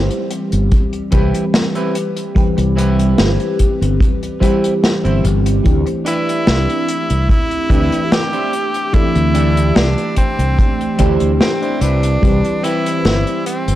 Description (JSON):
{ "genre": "vaporwave", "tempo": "73 BPM", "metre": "4/4", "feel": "straight", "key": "C major", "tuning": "A4 = 443 Hz", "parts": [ { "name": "FM electric piano with soft pad layer", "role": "accompaniment", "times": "0.0-13.8 s", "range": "E3 to B4", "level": "-19 LUFS", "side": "equal", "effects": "phaser, lush chorus, analog delay" }, { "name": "semi-hollow electric guitar", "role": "riff", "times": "0.0-13.5 s", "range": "C4 to G5", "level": "-24 LUFS", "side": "right 2 dB", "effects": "wide subtle chorus, analog delay" }, { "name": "fretless electric bass", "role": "bass", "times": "0.0-13.8 s", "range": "G1 to D2", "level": "-16 LUFS", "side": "equal", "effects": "lush chorus" }, { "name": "unplugged drum kit", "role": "drums", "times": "0.1-13.8 s", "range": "hi-hat, snare drum", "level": "-19 LUFS", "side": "left 1 dB", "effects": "none" }, { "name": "kick drum", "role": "drums", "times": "0.7-12.4 s", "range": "none", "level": "-14 LUFS", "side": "equal", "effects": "none" }, { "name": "edgy tenor saxophone", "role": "melody", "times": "6.1-13.8 s", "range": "C4 to G4", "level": "-20 LUFS", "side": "equal", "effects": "tape echo" } ], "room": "light reverb", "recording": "dry, gritty hardware recording", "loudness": "-13 LUFS", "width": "side -14 dB against mid", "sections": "0.0-13.8 A section", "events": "clean electric guitar fill 11.0-12.2", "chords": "0.0 Cmaj7; 5.6 D9sus4; 11.8 Cmaj7" }